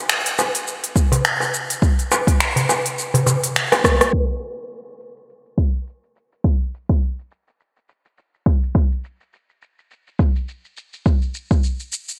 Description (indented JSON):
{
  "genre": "downtempo",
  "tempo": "104 BPM",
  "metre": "4/4",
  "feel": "swing 56% on 16ths",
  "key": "none",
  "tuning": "none",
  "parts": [
    { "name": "organic electronic drum kit", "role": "drums", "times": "0.1-12.2 s", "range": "finger snaps, hi-hat, rim click, shaker", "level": "-23 LUFS", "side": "equal", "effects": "overdrive, low-pass filter on perc, low-pass filter on hats, low-pass filter on snare, gated reverb" },
    { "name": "darbuka", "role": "percussion", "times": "0.4-4.1 s", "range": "none", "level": "-24 LUFS", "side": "equal", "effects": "none" },
    { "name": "electronic kick drum", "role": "drums", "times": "1.0-11.6 s", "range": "none", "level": "-19 LUFS", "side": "equal", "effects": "overdrive" }
  ],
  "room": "moderate lush hall reverb, RT60 2.7 s",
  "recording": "bright 1980s-style digital production, low-pass filter",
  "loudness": "-20 LUFS",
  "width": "mono",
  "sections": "0.0-4.1 A section; 4.1-12.2 B section",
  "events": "drum fill 3.7-4.1; filter sweep on drum 4.1-12.2; filter sweep 4.1-12.2",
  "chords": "none"
}